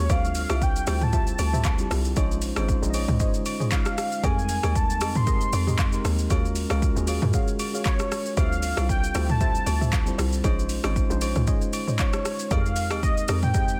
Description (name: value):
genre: amapiano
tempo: 116 BPM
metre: 4/4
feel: swing 55% on 16ths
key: unclear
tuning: A4 = 439 Hz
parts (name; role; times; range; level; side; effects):
- warm velvety synth lead; melody; 0.0-13.8 s; Db5 to C6; -32 LUFS; equal; chorus, tape echo
- mellow tine electric piano; accompaniment; 0.0-13.8 s; G3 to Eb5; -34 LUFS; equal; none
- hollow log drum bass; bass; 0.0-13.7 s; Ab1 to Gb2; -29 LUFS; equal; none
- deep mellow chord stab; stabs; 0.1-13.7 s; F4 to F5; -39 LUFS; equal; chorus, tape echo
- deep house drum kit; drums; 0.1-13.8 s; handclaps, hi-hat, kick drum, rim click, shaker, toms; -27 LUFS; equal; overdrive
- agogo bells and woodblock; percussion; 0.1-13.4 s; none; -39 LUFS; equal; none
room: digital ambience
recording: dense, heavily limited modern master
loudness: -24 LUFS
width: mono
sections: 0.0-13.8 A section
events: none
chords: 0.1 Dm11; 2.2 Bbm11; 4.2 Fm11; 6.3 Ebm11; 8.4 Dm11; 10.4 Bbm11; 12.5 Fm11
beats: | 0.10 0.61 1.13 1.65 | 2.17 2.68 3.20 3.72 | 4.24 4.75 5.27 5.79 | 6.30 6.82 7.34 7.86 | 8.37 8.89 9.41 9.93 | 10.44 10.96 11.48 11.99 | 12.51 13.03 13.55